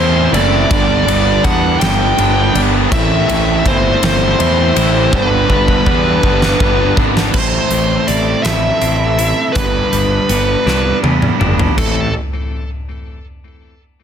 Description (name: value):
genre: quiet-loud alternative rock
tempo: 54 BPM (dotted quarters)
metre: 6/8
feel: straight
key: A minor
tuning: A4 = 440 Hz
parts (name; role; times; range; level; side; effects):
- bluesy overdriven lead guitar; melody; 0.0-12.1 s; A4 to G5; -17 LUFS; equal; distortion
- distorted electric guitar; riff; 0.0-12.1 s; G2 to A4; -19 LUFS; right 12 dB; distortion
- distorted electric guitar; riff; 0.0-7.3 s; G2 to E4; -21 LUFS; equal; overdrive
- fuzz guitar; riff; 0.0-7.3 s; G2 to E4; -20 LUFS; left 13 dB; distortion
- fuzz picked electric bass; bass; 0.0-12.1 s; F#1 to E2; -17 LUFS; equal; overdrive
- huge arena drum kit; drums; 0.3-12.0 s; crash cymbal, hi-hat, kick drum, ride cymbal, snare drum, toms; -18 LUFS; equal; none
- clean electric guitar; arpeggios; 7.3-12.1 s; G2 to E4; -22 LUFS; left 10 dB; digital delay
room: light reverb, studio reverb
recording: dense, heavily limited modern master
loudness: -11 LUFS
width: side -8 dB against mid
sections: 0.0-7.3 A section; 7.3-11.8 B section; 11.8-14.0 C section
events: drum fill 5.1-7.3, 10.7-11.8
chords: 0.0 Am; 0.7 G; 2.9 Am; 5.1 G; 7.3 Am; 9.6 G; 11.8 Am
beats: | 0.71 1.81 | 2.92 4.03 | 5.13 6.24 | 7.35 8.45 | 9.56 10.67 | 11.78